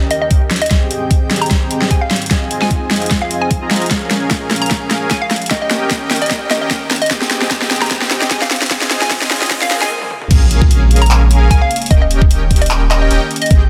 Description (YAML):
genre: future bass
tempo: 150 BPM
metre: 4/4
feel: swing 54% on 16ths, half-time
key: unclear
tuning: A4 = 439 Hz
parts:
  - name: airy breathy pad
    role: sustained chords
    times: 0.0-13.7 s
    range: Eb2 to G5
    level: -31 LUFS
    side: equal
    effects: chorus, sidechain pumping
  - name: soft supersaw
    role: riff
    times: 0.0-13.7 s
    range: C4 to Bb5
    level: -23 LUFS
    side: equal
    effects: sidechain pumping, low-pass filter, tape echo
  - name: hollow square pluck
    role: melody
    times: 0.1-13.6 s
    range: Eb5 to Bb5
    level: -23 LUFS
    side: equal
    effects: chorus, sidechain pumping, tape echo
  - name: big-room dance drum kit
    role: drums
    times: 0.1-13.6 s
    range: crash cymbal, handclaps, hi-hat, snare drum, toms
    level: -19 LUFS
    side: equal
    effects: none
  - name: electronic kick drum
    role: drums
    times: 0.3-13.6 s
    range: none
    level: -15 LUFS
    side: equal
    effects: none
  - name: riser, swell and impact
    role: sound effects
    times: 5.7-11.9 s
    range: none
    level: -28 LUFS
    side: equal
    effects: none
  - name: saturated sub bass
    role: bass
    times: 10.3-13.7 s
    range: Eb1 to Bb1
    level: -14 LUFS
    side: equal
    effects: sidechain pumping
room: light reverb, digital ambience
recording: dense, heavily limited modern master, high-pass filter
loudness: -14 LUFS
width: mono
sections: 0.0-10.3 A section; 10.3-13.7 B section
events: build-up 0.0-10.3; drum fill 0.0-9.9, 10.0-10.3; filter sweep on supersaw synth 0.0-10.3; filter sweep 0.0-10.3; swell 9.5-10.3; break 9.9-10.3; drop 10.3-13.7; impact 10.3-11.9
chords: 0.0 Eb7; 0.7 Abmaj7; 2.3 Fm7; 3.9 Bbm7; 5.5 Eb7; 7.1 Abmaj7; 8.7 Fm7; 10.3 Bbm7; 11.9 Eb7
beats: 0.31 | 0.71 1.11 1.51 1.91 | 2.31 2.71 3.11 3.51 | 3.91 4.31 4.71 5.11 | 5.51 5.91 6.31 6.71 | 7.11 7.51 7.91 8.31 | 8.71 9.11 9.51 9.91 | 10.31 10.71 11.11 11.51 | 11.91 12.31 12.71 13.11 | 13.51